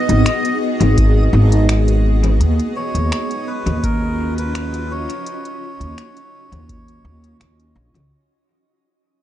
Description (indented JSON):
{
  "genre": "ambient dub",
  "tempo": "84 BPM",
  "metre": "4/4",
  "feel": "straight",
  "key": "unclear",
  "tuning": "A4 = 442 Hz",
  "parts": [
    { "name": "melodica", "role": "melody", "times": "0.0-7.4 s", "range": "A#4 to D#5", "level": "-27 LUFS", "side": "equal", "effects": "dub echo" },
    { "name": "granular cloud pad", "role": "sustained chords", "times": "0.0-8.1 s", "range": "B3 to D#5", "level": "-24 LUFS", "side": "right 1 dB", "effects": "built-in reverb" },
    { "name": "backwards swelling texture", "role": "texture", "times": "0.0-8.1 s", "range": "D#4 to D#5", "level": "-30 LUFS", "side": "equal", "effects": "built-in reverb" },
    { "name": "upright bass", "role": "bass", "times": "0.1-8.1 s", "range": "G#1 to D#2", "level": "-15 LUFS", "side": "equal", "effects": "none" },
    { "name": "organic electronic drum kit", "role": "drums", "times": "0.1-8.1 s", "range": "congas, finger snaps, hi-hat", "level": "-26 LUFS", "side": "left 3 dB", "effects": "dub echo" },
    { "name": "electronic kick drum", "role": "drums", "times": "1.0-6.8 s", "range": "none", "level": "-18 LUFS", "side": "equal", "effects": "none" }
  ],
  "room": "digital ambience",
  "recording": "echo-heavy mix, nothing above 10.6 kHz",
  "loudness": "-14 LUFS",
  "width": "side -12 dB against mid",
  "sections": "0.0-8.1 A section",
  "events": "fade-out 0.5-8.1",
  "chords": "0.0 G#m7; 2.4 D#m9"
}